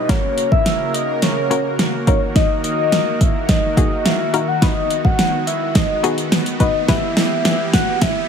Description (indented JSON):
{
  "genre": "dance-pop",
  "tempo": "106 BPM",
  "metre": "4/4",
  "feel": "straight",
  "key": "B major",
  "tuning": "A4 = 439 Hz",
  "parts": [
    { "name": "soft octave-layered synth lead", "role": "melody", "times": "0.0-8.3 s", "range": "C#5 to F#5", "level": "-20 LUFS", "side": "left 1 dB", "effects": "chorus, phaser, digital delay" },
    { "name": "hollow square pluck", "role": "accompaniment", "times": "0.0-7.8 s", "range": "A#3 to B4", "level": "-24 LUFS", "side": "left 6 dB", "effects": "chorus, sidechain pumping" },
    { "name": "soft supersaw", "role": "sustained chords", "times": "0.0-8.3 s", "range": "C#3 to A#4", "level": "-24 LUFS", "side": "right 1 dB", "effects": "sidechain pumping" },
    { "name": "riser and downlifter", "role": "sound effects", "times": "0.0-8.3 s", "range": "none", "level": "-32 LUFS", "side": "right 1 dB", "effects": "none" },
    { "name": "deep house drum kit", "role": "drums", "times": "0.1-8.1 s", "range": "hi-hat, kick drum, snare drum", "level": "-17 LUFS", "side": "equal", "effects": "none" }
  ],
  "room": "light reverb",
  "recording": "high-pass filter",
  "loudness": "-15 LUFS",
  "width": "side -7 dB against mid",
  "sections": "0.0-8.3 A section",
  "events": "build-up 0.0-8.3; drum fill 0.0-8.3; riser 0.0-8.3",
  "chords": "0.1 F#; 2.1 D#m; 4.6 B; 6.9 Em",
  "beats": "| 0.09 0.66 1.23 1.79 | 2.36 2.92 3.49 4.06 | 4.62 5.19 5.75 6.32 | 6.89 7.45 8.02"
}